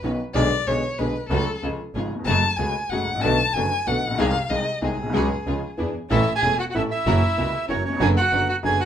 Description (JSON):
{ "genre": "tango", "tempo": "188 BPM", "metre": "3/4", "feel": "rubato", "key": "F# minor", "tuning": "A4 = 441 Hz", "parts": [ { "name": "warm violin", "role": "second line", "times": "0.0-8.9 s", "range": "C#4 to A5", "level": "-26 LUFS", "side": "left 4 dB", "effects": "none" }, { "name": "clear upright piano", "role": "accompaniment", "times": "0.0-8.8 s", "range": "E1 to A4", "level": "-25 LUFS", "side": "left 1 dB", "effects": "none" }, { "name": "rich chamber string section", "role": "stabs", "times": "0.0-8.8 s", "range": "A3 to B4", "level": "-31 LUFS", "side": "right 1 dB", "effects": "none" }, { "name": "clear double bass", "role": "bass", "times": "0.0-8.8 s", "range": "E1 to E2", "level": "-26 LUFS", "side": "right 1 dB", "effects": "none" }, { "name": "bandoneon", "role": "melody", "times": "6.1-8.9 s", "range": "C#5 to G#5", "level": "-23 LUFS", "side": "right 4 dB", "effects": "none" } ], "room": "moderate club reverb, RT60 0.7 s", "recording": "minimal, uncompressed stereo recording", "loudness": "-20 LUFS", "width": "side -9 dB against mid", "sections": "0.0-6.1 A section; 6.1-8.9 B section", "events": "violin solo 0.0-6.1", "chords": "0.3 G#dim/B; 1.3 F#m/C#; 1.6 C#; 2.3 F#madd9; 3.2 Bm7; 4.2 G#/B#; 5.1 C#sus4; 5.5 C#; 5.8 E7; 6.1 A; 7.1 F#7; 8.0 Bm/F#" }